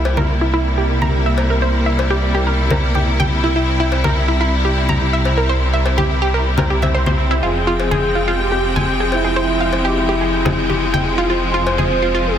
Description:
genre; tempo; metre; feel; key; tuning
progressive house; 124 BPM; 4/4; straight; F harmonic minor; A4 = 438 Hz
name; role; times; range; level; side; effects
clear studio string section; sustained chords; 0.0-12.4 s; C3 to G5; -20 LUFS; equal; none
dark detuned saw bass; bass; 0.0-12.4 s; F1 to C2; -20 LUFS; equal; none
cowbell and congas; percussion; 0.1-11.9 s; none; -23 LUFS; left 3 dB; none
wide unison pluck; arpeggios; 0.2-12.3 s; E4 to Bb5; -20 LUFS; right 1 dB; digital delay
expressive synth lead; melody; 7.4-12.4 s; E4 to C5; -20 LUFS; equal; wide subtle chorus, digital delay
room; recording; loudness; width
moderate huge ambient reverb, RT60 4.9 s; dense, heavily limited modern master; -14 LUFS; side -9 dB against mid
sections
0.0-12.4 A section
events
filter sweep on synth pluck 0.0-12.4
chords
0.0 C7; 7.4 Fmadd9

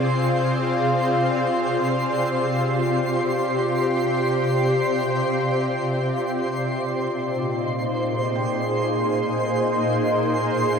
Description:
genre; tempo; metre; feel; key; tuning
ambient; free time; none; none; unclear; A4 = 440 Hz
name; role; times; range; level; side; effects
shimmering ambient pad; sustained chords; 0.0-10.8 s; Bb2 to D5; -21 LUFS; equal; chorus, built-in reverb
twinkling granular texture; texture; 0.0-10.8 s; C5 to C6; -27 LUFS; equal; built-in reverb
felt-muted upright piano; arpeggios; 8.4-10.8 s; G5; -41 LUFS; right 1 dB; none
room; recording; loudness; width
wet huge ambient reverb, RT60 7.7 s; none; -20 LUFS; side -6 dB against mid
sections
0.0-6.5 A section; 6.5-10.8 B section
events
none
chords
0.0 Bb9/C (rootless); 6.5 Bb7sus4

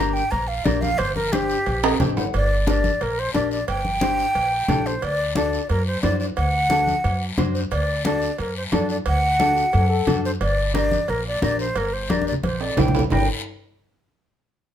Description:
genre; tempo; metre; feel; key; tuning
latin, cumbia; 178 BPM; 4/4; straight; G harmonic minor; A4 = 440 Hz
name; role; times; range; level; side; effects
breathy mellow silver concert flute; melody; 0.0-13.3 s; G4 to Bb5; -23 LUFS; equal; none
mellow electric guitar; accompaniment; 0.0-13.3 s; D4 to Bb5; -24 LUFS; left 4 dB; none
upright bass; bass; 0.0-13.3 s; G1 to F#2; -25 LUFS; right 1 dB; none
guiro; percussion; 0.2-13.2 s; none; -35 LUFS; left 5 dB; none
congas; percussion; 0.3-13.2 s; none; -27 LUFS; equal; none
cowbell and timbales; percussion; 0.3-13.2 s; none; -29 LUFS; right 5 dB; none
dark trombone; second line; 9.4-10.1, 13.1-13.3 s; D4 to Bb4; -28 LUFS; left 9 dB; none
room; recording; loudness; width
light reverb; minimal, uncompressed stereo recording; -19 LUFS; side -10 dB against mid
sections
0.0-2.3 A section; 2.3-13.1 B section; 13.1-14.5 C section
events
flute solo 0.0-2.3; clean electric guitar fill 1.7-2.3; drum fill 1.8-2.3, 12.1-13.1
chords
0.0 Gm; 5.0 D; 10.4 Gm

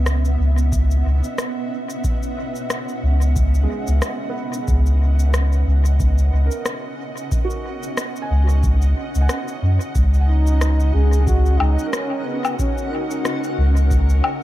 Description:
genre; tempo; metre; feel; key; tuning
ambient dub; 91 BPM; 4/4; swing 56% on 16ths; C# dorian; A4 = 440 Hz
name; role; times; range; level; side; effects
granular cloud pad; sustained chords; 0.0-14.4 s; B3 to F#5; -28 LUFS; right 1 dB; built-in reverb
soft dub sub bass; bass; 0.0-14.2 s; C#2 to F#2; -15 LUFS; equal; none
electronic rim click, cabasa and woodblock; drums; 0.1-14.4 s; none; -27 LUFS; left 2 dB; dub echo
electronic kick drum; drums; 0.7-14.1 s; none; -22 LUFS; equal; none
felt-muted upright piano; arpeggios; 3.6-14.4 s; G#3 to G#5; -33 LUFS; right 3 dB; low-pass filter, tape echo
backwards swelling texture; texture; 10.0-14.4 s; F#4 to F#5; -32 LUFS; left 4 dB; built-in reverb
mellow trombone; melody; 10.3-13.6 s; B3 to G#4; -26 LUFS; right 1 dB; dub echo
room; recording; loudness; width
digital ambience; none; -17 LUFS; side -15 dB against mid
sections
0.0-14.4 A section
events
none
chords
0.0 C#m11; 10.0 D#m/C#

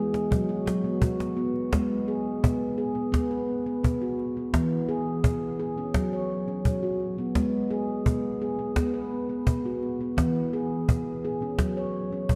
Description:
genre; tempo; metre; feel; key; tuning
world meditative, meditative tuned percussion; 85 BPM; 4/4; straight; G# minor; A4 = 440 Hz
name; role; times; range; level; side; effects
handpan; arpeggios; 0.0-12.4 s; E3 to C#5; -29 LUFS; equal; diffuse ambient delay
cajon; percussion; 0.1-12.4 s; none; -29 LUFS; equal; none
room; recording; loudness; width
wet concert hall reverb, RT60 2.5 s; dark, warm production; -28 LUFS; mono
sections
0.0-1.7 A section; 1.7-12.4 B section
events
none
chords
0.3 F#sus4; 1.7 G#m; 3.1 B5; 4.5 E; 5.9 F#5; 7.4 G#m; 8.8 B5; 10.2 E; 11.6 F#5

